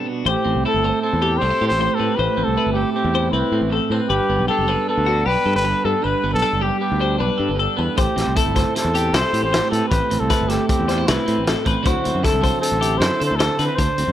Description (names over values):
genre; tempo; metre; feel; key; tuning
math rock and midwest emo; 155 BPM; 5/4; straight; unclear; A4 = 439 Hz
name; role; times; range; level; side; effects
twelve-string electric guitar; accompaniment; 0.0-14.1 s; G2 to D5; -24 LUFS; right 7 dB; none
twelve-string electric guitar; arpeggios; 0.0-14.1 s; F#4 to C5; -24 LUFS; left 8 dB; none
breathy trumpet; melody; 0.3-14.1 s; D4 to C5; -22 LUFS; equal; none
growling fingered electric bass; bass; 0.3-14.1 s; F#1 to D3; -23 LUFS; equal; overdrive
loose indie drum kit; drums; 8.0-14.1 s; hi-hat, kick drum, snare drum; -22 LUFS; equal; none
room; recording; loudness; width
little or no reverb; none; -17 LUFS; side -11 dB against mid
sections
0.3-14.1 A section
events
break 0.0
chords
0.3 Am7; 4.1 Gmaj9; 8.0 Am7; 11.9 D9